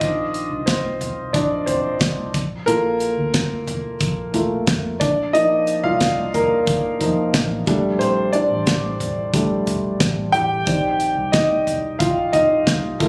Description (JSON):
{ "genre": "piano-driven pop", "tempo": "90 BPM", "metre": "4/4", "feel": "straight", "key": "unclear", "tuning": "A4 = 441 Hz", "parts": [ { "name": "warm upright piano", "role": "accompaniment", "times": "0.0-13.1 s", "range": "Eb3 to G5", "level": "-21 LUFS", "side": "equal", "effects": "none" }, { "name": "crunchy overdriven guitar", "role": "riff", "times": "0.0-0.5 s", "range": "D4", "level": "-33 LUFS", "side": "equal", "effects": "phaser" }, { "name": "vintage muted fingered electric bass", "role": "bass", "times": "0.0-13.1 s", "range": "A1 to F2", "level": "-31 LUFS", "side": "equal", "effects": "none" }, { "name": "modern studio drum kit", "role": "drums", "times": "0.0-13.1 s", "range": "hi-hat, kick drum, snare drum, toms", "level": "-25 LUFS", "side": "equal", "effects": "none" } ], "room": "light reverb", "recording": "recorded on a phone in the room, club reverb", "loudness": "-20 LUFS", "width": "mono", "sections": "0.0-13.1 A section", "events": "upright piano solo 0.0-13.1", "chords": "0.0 Cmadd9/Bb; 2.3 Bbmaj7; 5.0 Ebsus2/Bb; 7.7 Bbmaj13/A; 10.7 Cmadd9/Bb", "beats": "| 0.01 0.68 1.34 2.01 | 2.68 3.34 4.01 4.67 | 5.34 6.01 6.67 7.34 | 8.01 8.67 9.34 10.01 | 10.67 11.34 12.00 12.67" }